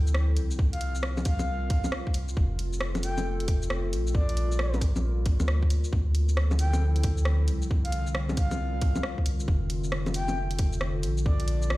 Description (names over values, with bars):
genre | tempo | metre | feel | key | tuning
future garage | 135 BPM | 4/4 | swing 64% on 16ths | unclear | A4 = 442 Hz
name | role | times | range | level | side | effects
warbly tape-like pad | sustained chords | 0.0-11.8 s | D3 to Bb4 | -36 LUFS | left 2 dB | chorus, built-in reverb, sidechain pumping
soft dub sub bass | bass | 0.0-11.8 s | F1 to D2 | -27 LUFS | equal | tube saturation, sidechain pumping
garage drum kit | drums | 0.1-11.8 s | bongos, hi-hat, rim click, shaker | -34 LUFS | equal | overdrive
electronic kick drum | drums | 0.6-11.4 s | none | -25 LUFS | equal | overdrive
breathy flute-like synth lead | melody | 0.7-11.8 s | D5 to G5 | -37 LUFS | left 1 dB | lush chorus, tape echo
room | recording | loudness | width
digital ambience | played on a big sound system in a bare room, stone room reverb | -24 LUFS | side -18 dB against mid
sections
0.0-11.8 A section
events
none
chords
0.0 Dm9; 0.6 C7sus4; 2.4 F; 4.1 Bb6; 5.9 Dm9; 7.7 C9sus4; 9.5 F6; 11.3 Bb6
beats
0.15 | 0.59 1.04 1.48 1.93 | 2.37 2.81 3.26 3.70 | 4.15 4.59 5.04 5.48 | 5.93 6.37 6.82 7.26 | 7.70 8.15 8.59 9.04 | 9.48 9.93 10.37 10.81 | 11.26 11.70